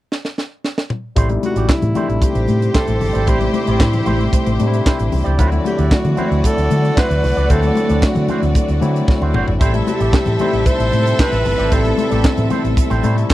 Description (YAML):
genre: disco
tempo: 114 BPM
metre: 4/4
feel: straight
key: A dorian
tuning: A4 = 440 Hz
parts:
  - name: tight funk drum kit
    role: drums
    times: 0.1-13.3 s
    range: handclaps, hi-hat, kick drum, snare drum, toms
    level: -16 LUFS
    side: equal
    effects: none
  - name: barky tine electric piano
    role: accompaniment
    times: 1.2-13.3 s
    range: B2 to E4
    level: -22 LUFS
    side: left 4 dB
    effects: overdrive
  - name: electric guitar with an envelope filter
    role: accompaniment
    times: 1.2-13.3 s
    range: E4 to D5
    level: -27 LUFS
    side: right 5 dB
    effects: none
  - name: fingered electric bass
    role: bass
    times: 1.2-13.2 s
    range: G1 to D3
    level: -18 LUFS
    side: equal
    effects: none
  - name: congas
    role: percussion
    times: 1.3-13.3 s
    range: none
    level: -26 LUFS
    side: left 7 dB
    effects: none
  - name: breathy alto saxophone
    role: melody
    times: 1.5-12.5 s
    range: E4 to C5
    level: -22 LUFS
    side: equal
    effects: tape echo
  - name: rich studio string section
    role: second line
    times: 2.2-13.3 s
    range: A3 to E5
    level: -23 LUFS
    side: right 2 dB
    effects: none
room: little or no reverb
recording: dry, close 1970s-style studio recording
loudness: -14 LUFS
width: side -15 dB against mid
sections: 0.0-1.2 A section; 1.2-13.3 B section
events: drum fill 0.1-1.2, 9.1-9.6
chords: 0.0 N.C.; 1.2 Am7; 5.4 D9; 9.6 Am7